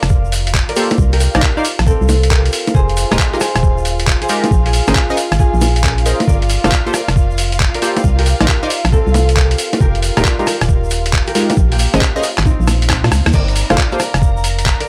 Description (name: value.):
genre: UK garage, two-step garage.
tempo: 136 BPM.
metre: 4/4.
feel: swing 66% on 16ths.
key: G phrygian.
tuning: A4 = 441 Hz.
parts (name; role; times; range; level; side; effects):
concert harp; melody; 0.0-14.9 s; Bb3 to F5; -25 LUFS; equal; none.
dark studio violin section; sustained chords; 0.0-14.9 s; F4 to Bb5; -29 LUFS; equal; sidechain pumping.
organ-like FM bass; bass; 0.0-14.7 s; Eb1 to Bb2; -18 LUFS; equal; tube saturation.
boom bap sampler-style drum kit; drums; 0.0-14.9 s; bongos, crash cymbal, handclaps, hi-hat, rim click; -20 LUFS; equal; none.
tube shaker; percussion; 0.0-14.9 s; none; -33 LUFS; equal; none.
electronic kick drum; drums; 0.1-14.8 s; none; -17 LUFS; equal; none.
punchy chord stab; stabs; 0.8-14.0 s; Ab3 to F5; -22 LUFS; equal; chorus.
room: light reverb.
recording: dry, gritty hardware recording, vinyl crackle.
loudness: -14 LUFS.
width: mono.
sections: 0.0-14.9 A section.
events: drum fill 12.7-13.3.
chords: 0.0 Gm11; 1.0 C9sus4; 2.5 Fm11; 4.5 Bbm11; 6.3 Gm11; 8.0 C9sus4; 9.6 Fm11; 11.6 Bbm11; 13.3 Gm11.